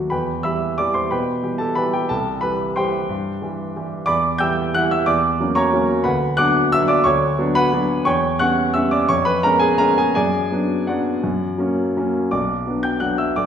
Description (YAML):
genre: classical, piano waltz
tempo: 159-191 BPM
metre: 3/4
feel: rubato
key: B minor from 4.1 s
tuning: A4 = 440 Hz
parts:
  - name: warm grand piano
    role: solo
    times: 0.0-13.5 s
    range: B1 to G6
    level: -17 LUFS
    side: equal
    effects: none
room: wet recital hall reverb, RT60 1.3 s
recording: heard from further back in the room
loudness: -17 LUFS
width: side -8 dB against mid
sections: 0.0-12.3 A section; 12.3-13.5 B section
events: none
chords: 0.1 Em; 2.1 C; 4.1 Em7; 5.1 F#7/E; 6.1 Bm/D; 8.1 C#m7b5/E; 9.1 C#7/E#; 10.1 Bm/F#; 11.2 F#; 12.3 Bm